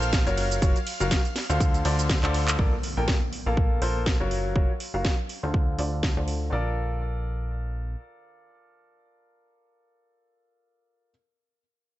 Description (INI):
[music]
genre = piano house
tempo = 122 BPM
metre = 4/4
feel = swing 56% on 16ths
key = Bb major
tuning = A4 = 440 Hz
[part]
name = string machine, violins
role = sustained chords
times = 0.0-2.6 s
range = F5 to F6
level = -38 LUFS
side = equal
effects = ensemble chorus, sidechain pumping
[part]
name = clear baby grand piano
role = riff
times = 0.0-11.1 s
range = D3 to G5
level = -30 LUFS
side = left 1 dB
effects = sidechain pumping, low-pass filter, digital delay
[part]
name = plucky analog bass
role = bass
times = 0.0-8.0 s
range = Gb1 to D2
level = -28 LUFS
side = equal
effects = sidechain pumping
[part]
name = house drum kit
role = drums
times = 0.0-6.4 s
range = handclaps, hi-hat, ride cymbal, shaker, snare drum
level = -31 LUFS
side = right 1 dB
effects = none
[part]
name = electronic kick drum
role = drums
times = 0.1-6.1 s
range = none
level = -24 LUFS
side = equal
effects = none
[part]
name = impact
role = sound effects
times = 2.6-4.6 s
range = none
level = -37 LUFS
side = equal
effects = none
[sound]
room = digital ambience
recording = nothing above 8.0 kHz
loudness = -23 LUFS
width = side -15 dB against mid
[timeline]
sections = 0.0-2.6 A section; 2.6-6.5 B section; 6.5-10.5 C section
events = drop 0.0-2.6; drum fill 2.2-2.6; impact 2.6-4.6; filter sweep on grand piano 2.6-6.5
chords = 0.4 Gbmaj7; 1.4 Dm7; 2.6 Bbmaj7(no3); 4.3 Gbmaj7; 5.3 Dm7; 6.5 Bbmaj7